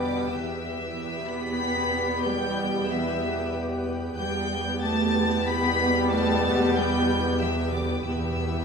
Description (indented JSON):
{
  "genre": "cinematic",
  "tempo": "93 BPM",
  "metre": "3/4",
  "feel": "straight",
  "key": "E minor",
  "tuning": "A4 = 441 Hz",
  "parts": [
    { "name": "warm studio violin section", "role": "melody", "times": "0.0-8.6 s", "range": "D6 to B6", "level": "-33 LUFS", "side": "left 3 dB", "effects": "none" },
    { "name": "rich studio violin section", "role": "second line", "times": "0.0-8.6 s", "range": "D5 to B5", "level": "-31 LUFS", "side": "left 4 dB", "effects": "none" },
    { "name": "warm studio viola section", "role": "accompaniment", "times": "0.0-8.6 s", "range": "B3 to G4", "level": "-30 LUFS", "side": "left 1 dB", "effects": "none" },
    { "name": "backwards swelling texture", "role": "sustained chords", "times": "0.0-8.6 s", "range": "G4 to G5", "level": "-40 LUFS", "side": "equal", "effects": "built-in reverb" },
    { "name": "bright trombone section", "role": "sustained chords", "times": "0.0-8.6 s", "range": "B2 to G3", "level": "-34 LUFS", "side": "right 3 dB", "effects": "none" },
    { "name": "dark French horn section", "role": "sustained chords", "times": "0.0-8.6 s", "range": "B3 to B4", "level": "-32 LUFS", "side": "left 3 dB", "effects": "none" },
    { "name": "warm studio cello section", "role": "bass", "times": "0.0-8.6 s", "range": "D3 to B3", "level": "-31 LUFS", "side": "right 4 dB", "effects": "none" },
    { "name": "warm studio double bass section", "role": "bass", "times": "0.0-8.6 s", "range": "E2", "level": "-31 LUFS", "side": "right 3 dB", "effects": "none" },
    { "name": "timpani", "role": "percussion", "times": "8.1-8.6 s", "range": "E2", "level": "-34 LUFS", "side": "left 1 dB", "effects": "none" }
  ],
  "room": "wet scoring stage reverb, RT60 1.6 s",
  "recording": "none",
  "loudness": "-23 LUFS",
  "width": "side -5 dB against mid",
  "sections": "0.0-8.6 A section",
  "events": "timpani fill 8.1-8.6",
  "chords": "0.0 Em"
}